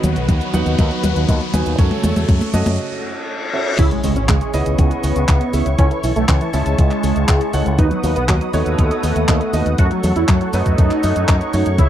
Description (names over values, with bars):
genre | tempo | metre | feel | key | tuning
italo disco | 120 BPM | 4/4 | straight | unclear | A4 = 439 Hz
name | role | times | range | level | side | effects
warm analog pad | sustained chords | 0.0-11.9 s | C#3 to D#6 | -25 LUFS | equal | chorus
warm baby grand piano | stabs | 0.0-11.9 s | A3 to A5 | -25 LUFS | right 3 dB | low-pass filter
fingered electric bass with an envelope filter | bass | 0.0-11.9 s | G#1 to F#2 | -19 LUFS | equal | none
clean 12-bit digital drum machine | drums | 0.0-11.9 s | cabasa, crash cymbal, handclaps, hi-hat, toms | -24 LUFS | left 1 dB | none
riser, reverse cymbal and impact | sound effects | 0.0-5.8 s | none | -26 LUFS | left 1 dB | none
electronic kick drum | drums | 0.3-11.9 s | none | -15 LUFS | equal | none
wide unison lead | melody | 3.8-11.9 s | E3 to F#4 | -20 LUFS | right 1 dB | ensemble chorus, tape echo
room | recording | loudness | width
little or no reverb | dry, close 1970s-style studio recording | -14 LUFS | side -11 dB against mid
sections
0.0-3.8 A section; 3.8-11.9 B section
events
drum fill 0.0-2.8; riser 0.0-2.8; filter sweep on grand piano 0.0-3.8; break 2.8-3.8; reverse cymbal 2.8-3.8; impact 3.8-5.8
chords
0.0 B; 1.8 F#m; 3.8 C#m; 5.8 A; 7.8 B; 9.8 F#m